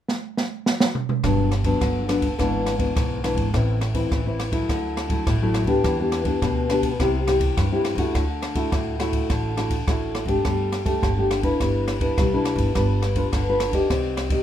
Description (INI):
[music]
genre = samba and choro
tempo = 104 BPM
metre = 4/4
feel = straight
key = G major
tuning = A4 = 439 Hz
[part]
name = open jazz drum kit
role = drums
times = 0.1-14.4 s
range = kick drum, ride cymbal, rim click, snare drum, toms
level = -25 LUFS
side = right 1 dB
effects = none
[part]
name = nylon-string guitar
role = accompaniment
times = 1.2-14.4 s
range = G2 to D5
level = -23 LUFS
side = left 2 dB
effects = none
[part]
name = upright bass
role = bass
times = 1.2-14.4 s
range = G1 to G2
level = -26 LUFS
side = right 1 dB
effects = none
[sound]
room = light reverb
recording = minimal, uncompressed stereo recording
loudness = -20 LUFS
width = side -10 dB against mid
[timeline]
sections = 0.0-1.2 A section; 1.2-14.4 B section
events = drum fill 0.1-1.2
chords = 0.0 N.C.; 1.2 Gmaj7; 2.4 E7/G#; 3.5 Am; 4.7 Dadd9; 5.8 Em7; 7.0 C; 8.2 Dadd9; 10.4 Gsus2; 11.6 Em7/G; 12.7 G7; 13.9 Cmadd9